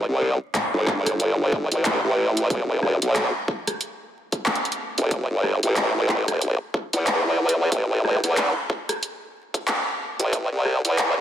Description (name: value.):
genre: glitch hop.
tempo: 92 BPM.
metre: 4/4.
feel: swing 59% on 16ths.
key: unclear.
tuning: A4 = 439 Hz.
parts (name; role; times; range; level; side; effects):
formant-sweep wobble bass; bass; 0.0-11.2 s; E1 to E2; -21 LUFS; equal; chorus, tube saturation, high-pass filter.
pop drum kit; drums; 0.2-11.1 s; handclaps, hi-hat, rim click; -25 LUFS; equal; none.
electronic kick drum; drums; 0.9-10.5 s; none; -27 LUFS; equal; high-pass filter on kick, high-pass filter on room.
room: moderate plate reverb, RT60 2.0 s.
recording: dense, heavily limited modern master, vinyl crackle, high-pass filter.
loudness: -20 LUFS.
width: side -10 dB against mid.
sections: 0.0-11.2 A section.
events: build-up 0.0-11.2.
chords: none.